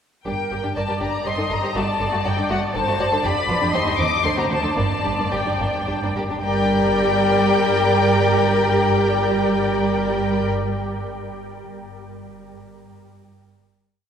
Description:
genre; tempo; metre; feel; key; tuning
quick classical-period movement for string orchestra; 106-122 BPM; 3/4; straight; G minor; A4 = 443 Hz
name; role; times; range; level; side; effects
rich studio violin section; melody; 0.3-10.5 s; F#5 to D6; -24 LUFS; left 4 dB; none
rich chamber violin section; second line; 0.3-10.5 s; A3 to Eb5; -24 LUFS; left 2 dB; none
rich studio viola section; accompaniment; 0.3-10.5 s; G3 to Eb5; -24 LUFS; right 3 dB; none
warm studio cello section; bass; 0.3-10.5 s; D2 to G2; -27 LUFS; right 2 dB; none
warm studio double bass section; bass; 0.3-10.5 s; F1 to Eb2; -28 LUFS; right 2 dB; none
room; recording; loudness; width
wet cathedral reverb, RT60 6.8 s; recorded in a church or concert hall; -18 LUFS; side -8 dB against mid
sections
0.3-6.4 A section; 6.4-9.7 final chord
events
slowing down 2.5-6.4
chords
0.3 Gm; 1.3 Am7b5/G; 1.8 D/G; 3.2 G7 (rootless); 3.7 Cm/Eb; 4.2 D7; 4.8 G5; 6.4 Gm

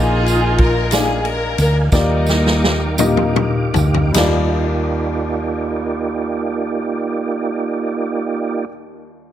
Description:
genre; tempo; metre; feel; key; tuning
slow gospel; 50-62 BPM (dotted quarters); 6/8; straight; Eb major; A4 = 441 Hz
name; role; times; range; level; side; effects
warm studio string section; melody; 0.0-3.3 s; G3 to Bb4; -20 LUFS; equal; none
warm upright piano; accompaniment; 0.0-9.3 s; Eb2 to Eb5; -22 LUFS; left 3 dB; none
tonewheel organ; sustained chords; 0.0-8.7 s; Bb3 to D6; -22 LUFS; right 4 dB; slow rotary speaker, chorus vibrato
hollow-body short-scale fingered electric bass; bass; 0.0-8.7 s; Bb1 to Eb2; -20 LUFS; equal; none
swinging big-band drum kit; drums; 0.3-4.3 s; kick drum, ride cymbal, snare drum, toms; -20 LUFS; left 1 dB; none
tambourine; percussion; 0.3-4.5 s; none; -28 LUFS; right 7 dB; none
room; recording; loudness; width
light reverb, small room ambience; none; -15 LUFS; side -11 dB against mid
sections
0.0-4.2 A section; 4.2-9.0 B section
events
slowing down 0.0-4.2; drum fill 1.9-4.2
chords
0.0 Bb7sus4; 1.9 Ebmaj9

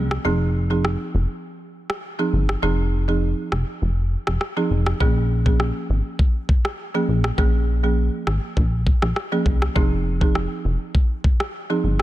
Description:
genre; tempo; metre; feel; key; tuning
dancehall; 101 BPM; 4/4; straight; Bb dorian; A4 = 438 Hz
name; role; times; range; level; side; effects
plucky analog bass; bass; 0.0-12.0 s; F1 to C2; -21 LUFS; equal; none
afro-pop drum kit; drums; 0.1-12.0 s; kick drum, rim click; -22 LUFS; equal; vintage 12-bit sampler grit
folk marimba with medium mallets; accompaniment; 0.2-11.9 s; F3 to Ab4; -24 LUFS; right 3 dB; none
room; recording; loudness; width
little or no reverb; dense, heavily limited modern master; -19 LUFS; side -15 dB against mid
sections
0.0-12.0 A section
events
break 0.0-5.0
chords
0.3 Fm7; 5.0 Bbm7; 9.8 Fm7

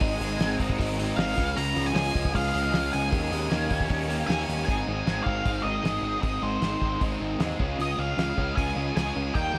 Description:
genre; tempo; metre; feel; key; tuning
indie rock; 154 BPM; 4/4; straight; Ab major; A4 = 440 Hz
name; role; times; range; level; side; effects
octave-fuzz lead guitar; melody; 0.0-9.6 s; C5 to Bb5; -33 LUFS; equal; distortion, slapback echo
crunchy overdriven guitar; riff; 0.0-9.6 s; Ab2 to Bb4; -36 LUFS; equal; ensemble chorus, slapback echo
overdriven electric guitar; riff; 0.0-9.6 s; Ab2 to G4; -33 LUFS; equal; none
growling picked electric bass; bass; 0.0-9.6 s; Ab1 to Eb2; -34 LUFS; equal; overdrive
cloth-damped thuddy drum kit; drums; 0.0-9.4 s; hi-hat, kick drum, snare drum; -32 LUFS; equal; none
room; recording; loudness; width
small room ambience; none; -27 LUFS; mono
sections
0.0-4.7 A section; 4.7-9.6 B section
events
none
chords
0.0 Abadd9; 1.4 Db; 3.1 Eb7sus4; 4.7 Ab; 7.6 Db

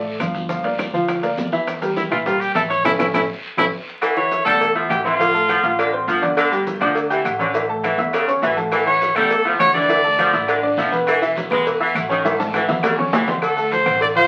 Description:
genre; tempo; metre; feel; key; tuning
latin, salsa; 204 BPM; 4/4; straight; unclear; A4 = 437 Hz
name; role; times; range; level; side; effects
bright baby grand piano; accompaniment; 0.0-14.3 s; E3 to G6; -24 LUFS; equal; none
upright bass; bass; 0.0-14.3 s; E1 to Bb2; -35 LUFS; equal; none
congas; percussion; 0.1-14.3 s; none; -36 LUFS; equal; none
bongos and cowbell; percussion; 0.2-14.2 s; none; -28 LUFS; equal; none
claves; percussion; 0.2-14.0 s; none; -33 LUFS; equal; none
guiro; percussion; 0.2-3.7, 8.7-14.3 s; none; -39 LUFS; equal; none
maracas; percussion; 0.2-14.3 s; none; -49 LUFS; equal; none
timbales and agogo bells; percussion; 0.2-14.3 s; none; -29 LUFS; equal; none
clear trumpet; melody; 2.0-5.9, 8.9-10.6, 13.4-14.3 s; E4 to D5; -20 LUFS; equal; none
bright saxophone section; second line; 4.0-13.3 s; C#3 to G#3; -24 LUFS; equal; none
room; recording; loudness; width
wet studio ambience, RT60 0.5 s; very old 78 rpm record, vinyl crackle; -19 LUFS; mono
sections
0.0-4.0 A section; 4.0-13.4 B section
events
drum fill 2.9-4.0, 12.2-13.4; band accent 2.9-4.0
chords
0.5 Gm7; 1.7 Edim; 2.9 A; 4.0 A7; 5.2 Dm7/A; 6.4 Gsus2; 7.5 A; 9.9 Dmadd9; 11.1 E5; 12.2 A; 13.4 Dm7

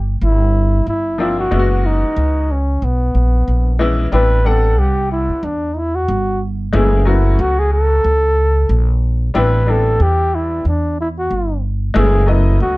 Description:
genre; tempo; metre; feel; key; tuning
hip hop; 92 BPM; 4/4; swing 57% on 16ths; unclear; A4 = 440 Hz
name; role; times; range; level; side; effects
upright bass; bass; 0.0-12.8 s; Gb1 to E2; -15 LUFS; equal; none
breathy flugelhorn; melody; 0.2-12.8 s; Cb4 to B4; -18 LUFS; equal; none
bright upright piano; accompaniment; 1.2-12.8 s; Fb3 to Gb5; -21 LUFS; left 3 dB; none
room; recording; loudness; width
little or no reverb; dark, warm production; -13 LUFS; side -21 dB against mid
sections
0.0-4.1 A section; 4.1-12.8 B section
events
none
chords
0.0 C9sus4; 1.5 Gb9sus4; 4.1 Am11; 6.7 Gbmadd11; 9.3 Am11; 12.0 Gbm11

